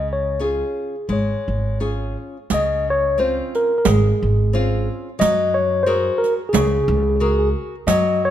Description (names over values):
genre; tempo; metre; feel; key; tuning
italian folk, Italian serenade; 88 BPM; 4/4; swing 55% on 8ths, rubato; Db major; A4 = 440 Hz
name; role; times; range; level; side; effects
mellow tine electric piano; melody; 0.0-8.3 s; Ab4 to Eb5; -20 LUFS; left 1 dB; none
nylon-string guitar; accompaniment; 0.0-8.3 s; Db3 to Bb4; -25 LUFS; left 3 dB; none
upright bass; bass; 0.0-8.3 s; Ab1 to Gb2; -22 LUFS; right 1 dB; none
riq; percussion; 2.5-8.2 s; none; -24 LUFS; right 8 dB; none
room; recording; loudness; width
light reverb; minimal, uncompressed stereo recording; -17 LUFS; side -11 dB against mid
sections
0.0-2.5 A section; 2.5-8.3 A section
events
none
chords
0.0 Db; 2.5 Dbmaj7; 5.2 Gbadd9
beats
0.39 1.08 1.79 | 2.50 3.18 3.87 4.55 | 5.22 5.89 6.55 7.22 | 7.89